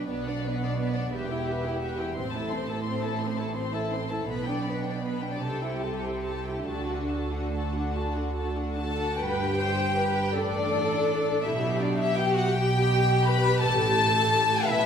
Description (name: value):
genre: classical, slow romantic movement for string orchestra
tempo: 46-59 BPM (dotted quarters)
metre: 6/8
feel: rubato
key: G major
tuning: A4 = 438 Hz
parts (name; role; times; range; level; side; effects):
- warm symphonic violin section; melody; 0.0-14.9 s; D5 to C6; -29 LUFS; left 4 dB; none
- warm chamber violin section; second line; 0.0-14.9 s; D4 to D5; -32 LUFS; left 3 dB; none
- warm chamber viola section; accompaniment; 0.0-14.9 s; B3 to C5; -31 LUFS; right 2 dB; none
- dark studio double bass section; bass; 0.1-14.9 s; E1 to D2; -32 LUFS; right 2 dB; none
- rich symphonic cello section; bass; 0.1-14.9 s; E2 to D3; -33 LUFS; right 3 dB; none
room: wet recital hall reverb, RT60 1.6 s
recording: recorded in a church or concert hall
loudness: -24 LUFS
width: side -7 dB against mid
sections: 0.0-9.2 A section; 9.2-14.9 B section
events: none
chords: 0.1 Bm; 1.1 Em; 2.2 Am; 4.3 G/B; 5.4 Am7/C; 6.7 D; 9.2 Gadd11; 10.3 D5/A; 11.5 G/B; 13.6 Gsus2/A